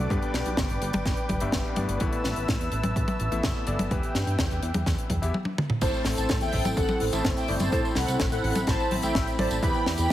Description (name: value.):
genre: italo disco.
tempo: 126 BPM.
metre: 4/4.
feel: straight.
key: A minor.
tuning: A4 = 440 Hz.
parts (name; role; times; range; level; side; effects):
warm analog pad; sustained chords; 0.0-10.1 s; E3 to E6; -32 LUFS; equal; chorus.
clear electric grand piano; stabs; 0.0-10.1 s; G2 to E5; -34 LUFS; left 3 dB; tape echo.
chorused synth bass; bass; 0.0-10.1 s; E1 to A2; -30 LUFS; equal; none.
electronic kick drum; drums; 0.1-10.1 s; none; -30 LUFS; equal; studio reverb.
tight funk drum kit; drums; 0.1-10.1 s; crash cymbal, hi-hat, snare drum, tambourine, toms; -30 LUFS; equal; studio reverb.
mellow synth brass; melody; 5.8-10.1 s; A4 to B5; -29 LUFS; equal; chorus, phaser, tape echo.
room: light reverb, small room reverb.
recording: heavily compressed radio sound, multiband compression.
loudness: -24 LUFS.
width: side -13 dB against mid.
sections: 0.0-5.8 A section; 5.8-10.1 B section.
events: drum fill 5.3-5.8.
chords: 0.1 G; 3.9 Em; 5.8 Am; 9.6 Em.